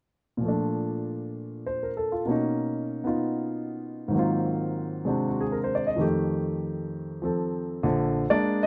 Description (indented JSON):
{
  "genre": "solo jazz",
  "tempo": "130 BPM",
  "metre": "4/4",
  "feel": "swing 66% on 8ths",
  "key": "Bb major",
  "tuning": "A4 = 440 Hz",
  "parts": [
    { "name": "warm baby grand piano", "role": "solo", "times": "0.4-8.7 s", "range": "Bb1 to Eb5", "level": "-28 LUFS", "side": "equal", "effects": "none" }
  ],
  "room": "light reverb",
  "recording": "dark, warm production",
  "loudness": "-28 LUFS",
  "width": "mono",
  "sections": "0.4-7.8 A section",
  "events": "none",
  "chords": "0.4 Bbmaj7; 2.3 Bmaj9; 4.1 Ab13; 6.0 F9; 7.8 Bb7",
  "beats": "| 0.42 0.89 1.35 1.81 | 2.28 2.74 3.21 3.67 | 4.13 4.60 5.06 5.52 | 5.99 6.45 6.91 7.37 | 7.84 8.30"
}